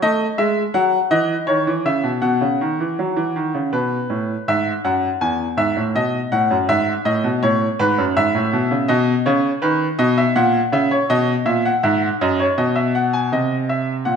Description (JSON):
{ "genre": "classical, baroque-style two-part invention for grand piano", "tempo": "81 BPM", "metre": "3/4", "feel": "straight", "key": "E major", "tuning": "A4 = 443 Hz", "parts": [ { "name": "bright baby grand piano", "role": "solo", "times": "0.0-14.2 s", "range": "E2 to G#5", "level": "-16 LUFS", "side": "equal", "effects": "none" } ], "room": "wet recital hall reverb, RT60 1.4 s", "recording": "none", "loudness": "-16 LUFS", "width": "side -6 dB against mid", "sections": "0.0-4.5 A section; 4.5-13.3 B section", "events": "none", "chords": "0.0 F#7(no3); 2.2 Bsus4 (rootless); 3.7 Asus2; 4.5 E; 6.0 B7; 6.7 E/G#; 8.9 B; 10.4 F#7/A#; 11.1 B; 13.3 G#7/B# (rootless)", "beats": "| 0.02 0.75 1.49 | 2.23 2.98 3.73 | 4.47 5.22 5.96 | 6.69 7.43 8.16 | 8.90 9.63 10.37 | 11.10 11.84 12.58 | 13.32 14.07" }